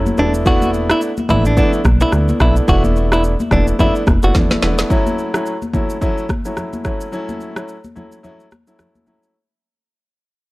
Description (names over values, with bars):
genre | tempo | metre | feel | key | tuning
afrobeats | 108 BPM | 4/4 | swing 58% on 16ths | F# minor | A4 = 438 Hz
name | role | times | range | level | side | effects
clear concert grand piano | accompaniment | 0.0-9.3 s | F#3 to E4 | -20 LUFS | equal | none
plucky analog bass | bass | 0.0-4.8 s | E1 to D2 | -16 LUFS | equal | none
afro-pop drum kit | drums | 0.1-9.3 s | kick drum, rim click, shaker, snare drum | -18 LUFS | equal | none
congas | percussion | 0.1-9.2 s | none | -24 LUFS | left 2 dB | none
direct-recorded clean electric guitar | melody | 0.2-4.3 s | D4 to F#4 | -19 LUFS | equal | analog delay
room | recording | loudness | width
little or no reverb | dry, gritty hardware recording | -13 LUFS | side -20 dB against mid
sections
0.0-4.9 A section; 4.9-9.3 B section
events
drum fill 4.3-4.9; fade-out 4.9-9.3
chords
0.2 E7sus4; 4.9 F#m7